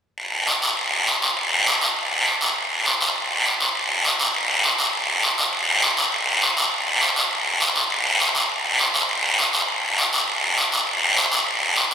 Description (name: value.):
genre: latin.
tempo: 202 BPM.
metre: 4/4.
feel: straight.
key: none.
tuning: none.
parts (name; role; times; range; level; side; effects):
guiro; percussion; 0.2-11.9 s; none; -18 LUFS; equal; none.
room: wet church reverb, RT60 2.5 s.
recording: recorded in a church or concert hall.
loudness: -18 LUFS.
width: side -8 dB against mid.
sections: 0.2-11.9 A section.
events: none.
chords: none.